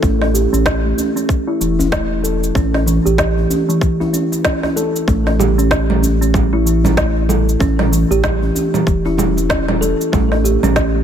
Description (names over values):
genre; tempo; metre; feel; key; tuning
organic downtempo; 95 BPM; 4/4; swing 59% on 16ths; A major; A4 = 440 Hz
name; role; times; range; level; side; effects
kalimba; arpeggios; 0.0-11.0 s; E3 to A4; -17 LUFS; right 1 dB; low-pass filter, ping-pong delay
warm sub bass; bass; 0.0-11.0 s; E1 to A1; -18 LUFS; equal; none
electronic kick drum; drums; 0.0-10.9 s; none; -18 LUFS; equal; overdrive
electronic shaker, snare drum and congas; drums; 0.0-10.9 s; none; -20 LUFS; right 2 dB; overdrive
djembe; percussion; 0.0-10.6 s; none; -26 LUFS; left 1 dB; none
room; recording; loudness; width
light reverb; none; -13 LUFS; side -9 dB against mid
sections
0.0-11.0 A section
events
filter sweep on kalimba 0.0-11.0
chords
0.0 A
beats
| 0.03 0.66 1.29 1.92 | 2.55 3.19 3.82 4.45 | 5.08 5.71 6.34 6.97 | 7.61 8.24 8.87 9.50 | 10.13 10.76